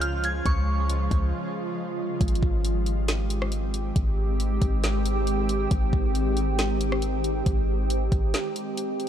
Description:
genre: hip hop, atmospheric cloud-rap.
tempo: 137 BPM.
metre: 4/4.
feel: half-time.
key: Ab major.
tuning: A4 = 440 Hz.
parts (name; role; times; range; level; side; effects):
glassy synth bell; melody; 0.0-0.9 s; Db6 to Ab6; -31 LUFS; right 2 dB; chorus, low-pass filter, tape echo.
shimmering ambient pad; sustained chords; 0.0-9.1 s; Db3 to G4; -28 LUFS; right 1 dB; chorus, built-in reverb, sidechain pumping.
warm 808-style bass; bass; 0.0-8.3 s; Ab1 to Db2; -26 LUFS; equal; none.
smooth R&B drum kit; drums; 0.0-9.1 s; hi-hat, kick drum, rim click, snare drum; -28 LUFS; equal; none.
room: digital ambience.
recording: dark, warm production.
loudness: -23 LUFS.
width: side -10 dB against mid.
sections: 0.0-2.2 A section; 2.2-9.1 B section.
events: break 1.3-2.2, 8.3-9.1.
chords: 0.0 Db; 2.2 Abmaj7.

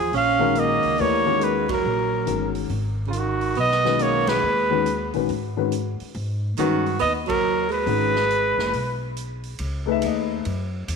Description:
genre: modal jazz.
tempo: 139 BPM.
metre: 4/4.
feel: swing 65% on 8ths.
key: unclear.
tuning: A4 = 440 Hz.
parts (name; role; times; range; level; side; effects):
warm trumpet; melody; 0.0-9.1 s; F4 to F5; -23 LUFS; equal; none.
warm tenor saxophone; second line; 0.0-9.1 s; Db3 to Db4; -26 LUFS; right 9 dB; tape echo.
upright bass; bass; 0.0-11.0 s; Gb1 to Ab2; -29 LUFS; equal; none.
swinging big-band drum kit; drums; 0.1-11.0 s; hi-hat, kick drum, ride cymbal, snare drum; -37 LUFS; right 4 dB; none.
dark upright piano; accompaniment; 0.4-10.4 s; Eb3 to E5; -25 LUFS; left 12 dB; none.
room: moderate echo chamber reverb, RT60 1.9 s, small room reverb.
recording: 1960s-style stereo with parts hard left and right.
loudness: -20 LUFS.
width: side -5 dB against mid.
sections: 0.0-9.6 A section; 9.6-11.0 B section.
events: band accent 1.6, 4.2, 7.2.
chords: 0.0 Ebm11; 2.7 Abm11; 9.6 C#m11.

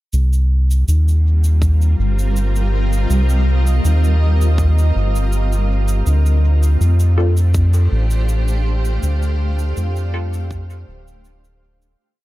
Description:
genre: ambient dub.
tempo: 81 BPM.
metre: 4/4.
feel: straight.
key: C dorian.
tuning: A4 = 440 Hz.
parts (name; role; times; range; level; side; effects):
granular cloud pad; sustained chords; 1.1-12.0 s; G3 to F5; -25 LUFS; equal; built-in reverb.
round analog bass; bass; 0.1-12.0 s; D1 to F2; -14 LUFS; equal; none.
cabasa; drums; 0.1-12.0 s; none; -35 LUFS; right 1 dB; none.
electronic kick drum; drums; 1.6-10.7 s; none; -22 LUFS; equal; none.
filtered dub chord stab; stabs; 7.2-10.4 s; C4 to A4; -26 LUFS; left 2 dB; phaser, lush chorus, dub echo.
room: small room ambience.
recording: echo-heavy mix.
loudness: -14 LUFS.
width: side -17 dB against mid.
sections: 0.1-12.0 groove.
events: fade-out 8.0-12.0.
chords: 0.1 Cm7; 6.1 Dm7.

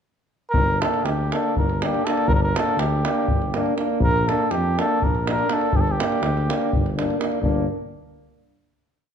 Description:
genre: balkan folk, Balkan brass band.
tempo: 245 BPM (eighths).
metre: 7/8.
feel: straight.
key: G minor.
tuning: A4 = 440 Hz.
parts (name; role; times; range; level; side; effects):
cornet with cup mute; melody; 0.5-7.0 s; G4 to Bb4; -24 LUFS; equal; none.
mellow tuba; bass; 0.5-7.7 s; G1 to F2; -25 LUFS; equal; none.
davul; percussion; 0.5-7.7 s; none; -25 LUFS; equal; none.
brilliant trombone; accompaniment; 0.8-7.7 s; Bb3; -28 LUFS; right 6 dB; none.
clear euphonium; accompaniment; 0.8-7.7 s; D4; -28 LUFS; left 6 dB; none.
room: moderate recital hall reverb, RT60 1.3 s.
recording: dark, warm production.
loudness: -19 LUFS.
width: side -8 dB against mid.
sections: 0.5-7.4 A section; 7.4-9.1 final chord.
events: none.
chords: 0.5 Gm; 4.0 Bb; 5.7 Gm.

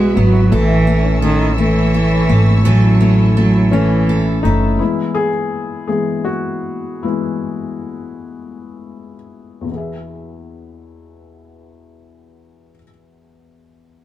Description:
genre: six-eight pop ballad.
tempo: 40-56 BPM (dotted quarters).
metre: 6/8.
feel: straight.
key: E major.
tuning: A4 = 440 Hz.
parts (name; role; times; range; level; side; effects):
warm cello; melody; 0.0-4.5 s; D#3 to G#3; -15 LUFS; right 2 dB; none.
felt-muted upright piano; accompaniment; 0.0-14.0 s; E2 to E5; -19 LUFS; left 4 dB; none.
warm studio string section; sustained chords; 0.0-4.8 s; F#4 to E6; -28 LUFS; left 2 dB; none.
picked steel-string acoustic guitar; arpeggios; 0.0-5.4 s; E3 to A4; -24 LUFS; right 5 dB; none.
upright bass; bass; 0.0-4.8 s; F#1 to B1; -15 LUFS; equal; none.
room: light reverb.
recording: band playing live in one room.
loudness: -13 LUFS.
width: side -13 dB against mid.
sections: 0.0-4.8 A section; 4.8-9.7 B section; 9.7-14.0 C section.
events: slowing down 4.8-9.7; felt piano solo 4.8-9.7.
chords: 0.0 Bsus4; 0.5 A; 4.8 E.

